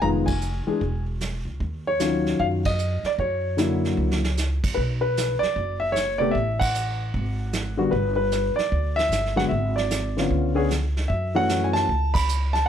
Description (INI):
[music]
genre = jazz piano trio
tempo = 152 BPM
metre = 4/4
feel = swing 66% on 8ths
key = B minor from 4.8 s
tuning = A4 = 440 Hz
[part]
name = dark grand piano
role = melody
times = 0.0-12.7 s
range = C3 to B5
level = -23 LUFS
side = left 1 dB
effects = plate reverb
[part]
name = upright bass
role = bass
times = 0.0-12.6 s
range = Fb1 to Gb2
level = -26 LUFS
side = equal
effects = none
[part]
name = vintage brush drum kit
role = drums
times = 0.0-12.7 s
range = brushed snare drum, crash cymbal, hi-hat, kick drum, ride cymbal, snare drum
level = -29 LUFS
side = right 2 dB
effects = none
[sound]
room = light reverb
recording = none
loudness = -21 LUFS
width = side -9 dB against mid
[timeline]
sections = 0.0-4.8 A section; 4.8-12.7 B section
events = band accent 0.2, 2.6, 6.5, 12.1; drum fill 4.0-4.4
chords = 0.0 Fm7b5; 0.8 Dbm/Fb; 1.6 Ebm9; 3.2 Gb7b13; 4.8 Bm; 6.3 F#m7/A; 7.1 G#7(no3); 7.9 G; 9.5 G#(b5, no3); 10.3 C#7b9; 11.1 F#m7